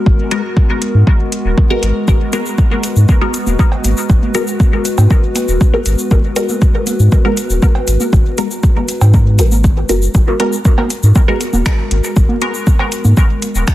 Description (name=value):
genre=dub techno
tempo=119 BPM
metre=4/4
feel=straight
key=G# minor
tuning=A4 = 441 Hz
part: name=warbly tape-like pad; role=sustained chords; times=0.0-13.7 s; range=G#3 to B4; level=-21 LUFS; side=left 1 dB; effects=chorus, built-in reverb, vintage 12-bit sampler grit, sidechain pumping
part: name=warm sub bass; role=bass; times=0.1-13.6 s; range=D#1 to G#2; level=-11 LUFS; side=equal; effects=sidechain pumping
part: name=electronic kick drum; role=drums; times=0.1-13.7 s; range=none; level=-11 LUFS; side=equal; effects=overdrive
part: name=filtered dub chord stab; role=stabs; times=0.3-12.5 s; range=G#3 to A#4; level=-20 LUFS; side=left 1 dB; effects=phaser, sidechain pumping, dub echo
part: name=deep house drum kit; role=drums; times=0.3-13.7 s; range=finger snaps, hi-hat, shaker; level=-23 LUFS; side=left 1 dB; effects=overdrive, soft clipping on snare
part: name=congas and cowbell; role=percussion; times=2.3-13.1 s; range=none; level=-22 LUFS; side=right 2 dB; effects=sidechain pumping on perc, dub echo
room=little or no reverb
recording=dense, heavily limited modern master, vinyl crackle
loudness=-10 LUFS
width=side -15 dB against mid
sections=0.0-10.1 A section; 10.1-13.7 A section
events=filter sweep on synth stab 0.0-10.1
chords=0.0 G#m9